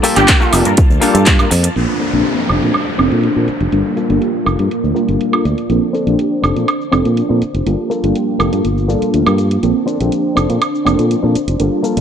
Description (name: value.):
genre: filtered disco house.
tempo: 122 BPM.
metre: 4/4.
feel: straight.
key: Bb major.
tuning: A4 = 440 Hz.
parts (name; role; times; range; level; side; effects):
funky polysynth comp; accompaniment; 0.0-12.0 s; F3 to A5; -18 LUFS; equal; chorus, phaser, sidechain pumping, low-pass filter.
string machine, full ensemble; sustained chords; 0.0-12.0 s; Bb3 to A5; -20 LUFS; right 1 dB; ensemble chorus, sidechain pumping, low-pass filter.
direct-recorded clean electric guitar; riff; 0.0-12.0 s; Bb3 to G5; -21 LUFS; left 4 dB; sidechain pumping, low-pass filter.
house drum kit; drums; 0.0-12.0 s; crash cymbal, handclaps, hi-hat, shaker, woodblock; -18 LUFS; right 3 dB; sidechain pumping on hats, low-pass filter on hats, sidechain pumping on perc, low-pass filter on perc, low-pass filter on snare, sidechain pumping on cymbals, low-pass filter on cymbals.
bright horn section; melody; 0.2-0.7 s; G4; -17 LUFS; right 3 dB; sidechain pumping, low-pass filter.
fingered electric bass; bass; 0.2-12.0 s; F1 to Bb2; -16 LUFS; equal; sidechain pumping, low-pass filter.
electronic kick drum; drums; 0.3-1.4 s; none; -12 LUFS; equal; none.
downlifter; sound effects; 1.8-5.7 s; none; -23 LUFS; left 1 dB; none.
room: light reverb.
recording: dry, gritty hardware recording.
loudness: -12 LUFS.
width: side -8 dB against mid.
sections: 0.0-1.8 A section; 1.8-12.0 B section.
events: filter sweep 0.0-1.8, 1.8-12.0; filter sweep on drum 1.8-12.0; clean electric guitar fill 4.7-5.7, 8.6-9.6.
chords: 0.0 Gm9; 1.8 Bbmaj9; 3.7 Gm9; 5.7 Bbmaj9; 7.7 Gm9; 9.6 Bbmaj9.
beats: 0.29 0.78 1.27 | 1.76 2.25 2.75 3.24 | 3.73 4.22 4.71 5.21 | 5.70 6.19 6.68 7.17 | 7.67 8.16 8.65 9.14 | 9.63 10.12 10.62 11.11 | 11.60.